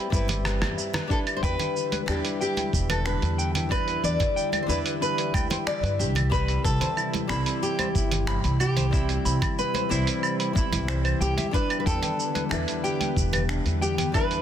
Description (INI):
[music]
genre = sunset chillout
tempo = 92 BPM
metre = 4/4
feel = straight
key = E minor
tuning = A4 = 440 Hz
[part]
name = nylon-string guitar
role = melody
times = 0.0-14.4 s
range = E4 to D5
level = -29 LUFS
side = left 2 dB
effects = digital delay
[part]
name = nylon-string guitar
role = accompaniment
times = 0.0-14.4 s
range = G3 to B5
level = -33 LUFS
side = equal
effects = auto-pan, digital delay
[part]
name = mellow electric guitar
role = arpeggios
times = 0.0-14.4 s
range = D4 to B5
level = -35 LUFS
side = left 2 dB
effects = digital delay
[part]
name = upright bass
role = bass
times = 0.1-14.4 s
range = E1 to G2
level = -27 LUFS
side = equal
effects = none
[part]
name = dusty soul sampler-style drum kit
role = drums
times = 0.1-14.4 s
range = claves, finger snaps, hi-hat, rim click, shaker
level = -31 LUFS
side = right 3 dB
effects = soft clipping on snare
[part]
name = electronic kick drum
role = drums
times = 0.1-14.3 s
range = none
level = -27 LUFS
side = equal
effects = none
[part]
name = congas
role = percussion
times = 0.1-14.1 s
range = none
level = -35 LUFS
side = right 2 dB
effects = none
[part]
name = airy breathy pad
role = sustained chords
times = 1.1-14.4 s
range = C3 to E4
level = -33 LUFS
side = left 1 dB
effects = chorus
[sound]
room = light reverb, small room reverb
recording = dense, heavily limited modern master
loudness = -23 LUFS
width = side -10 dB against mid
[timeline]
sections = 0.0-14.4 A section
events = drum fill 0.4-1.1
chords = 0.0 Cmaj7; 1.1 Em7; 6.3 Cmaj7; 11.5 Em7